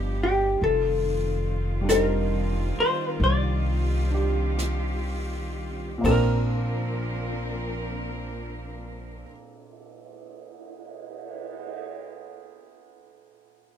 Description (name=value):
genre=jazz ballad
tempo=40-49 BPM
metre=4/4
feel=swing 69% on 8ths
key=Bb major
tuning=A4 = 440 Hz
part: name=vintage hollow-body jazz guitar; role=melody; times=0.0-9.2 s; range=G4 to D5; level=-25 LUFS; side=left 2 dB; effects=none
part: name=warm baby grand piano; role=accompaniment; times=0.0-13.8 s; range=Bb2 to C5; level=-32 LUFS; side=right 2 dB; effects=none
part: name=warm symphonic cello section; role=sustained chords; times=0.0-9.2 s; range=Eb3 to Bb4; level=-34 LUFS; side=equal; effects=none
part: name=upright bass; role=bass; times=0.0-9.2 s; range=F1 to C2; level=-27 LUFS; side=equal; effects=none
part: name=jazz brush drum kit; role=drums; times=0.6-11.8 s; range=brushed snare drum, cymbal swell, hi-hat, kick drum, ride cymbal, snare drum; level=-38 LUFS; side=right 3 dB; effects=none
room=little or no reverb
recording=minimal, uncompressed stereo recording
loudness=-23 LUFS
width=side -9 dB against mid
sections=0.6-6.0 A section; 6.0-12.0 B section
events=slowing down 0.0-6.0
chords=0.0 G7b9; 0.6 F13; 6.0 Bbadd9